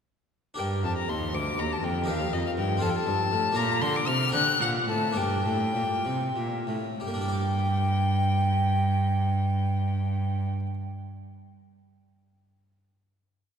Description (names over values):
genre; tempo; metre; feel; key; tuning
classical, baroque-style sonata movement with continuo; 60-82 BPM (dotted quarters); 6/8; straight; G minor; A4 = 440 Hz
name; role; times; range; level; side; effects
harpsichord; accompaniment; 0.5-10.7 s; D2 to D5; -32 LUFS; equal; none
rich violin; melody; 0.6-10.5 s; Eb5 to F#6; -29 LUFS; left 3 dB; none
rich cello; bass; 0.6-10.5 s; D2 to D3; -28 LUFS; right 2 dB; none
room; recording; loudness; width
wet church reverb, RT60 2.8 s; none; -24 LUFS; side -7 dB against mid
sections
0.6-7.0 A section; 7.0-10.9 final chord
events
slowing down 2.8-7.0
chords
0.6 Gm; 2.1 Eb; 2.8 F; 3.6 Bb; 4.3 D5; 5.2 Gm